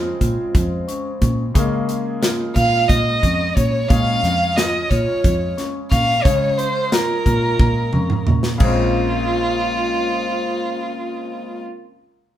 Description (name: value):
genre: progressive instrumental, band music in an uneven meter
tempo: 179 BPM (eighths)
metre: 7/8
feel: straight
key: Bb minor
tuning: A4 = 441 Hz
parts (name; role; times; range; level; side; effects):
- clear concert grand piano; accompaniment; 0.0-11.6 s; Db3 to Db4; -27 LUFS; left 2 dB; none
- vibraphone with medium hard mallets; arpeggios; 0.0-11.7 s; Bb3 to Bb4; -26 LUFS; left 1 dB; none
- fingered electric bass; bass; 0.0-11.6 s; Bb1 to Db3; -22 LUFS; equal; none
- modern studio drum kit; drums; 0.2-8.8 s; crash cymbal, hi-hat, kick drum, snare drum, toms; -19 LUFS; equal; none
- rich violin; melody; 2.6-11.6 s; F4 to F5; -20 LUFS; right 1 dB; none
room: moderate large studio reverb, RT60 0.9 s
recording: band playing live in one room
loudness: -16 LUFS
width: side -11 dB against mid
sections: 0.0-8.6 A section; 8.6-11.0 B section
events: drum fill 7.6-8.6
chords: 0.0 Bbm7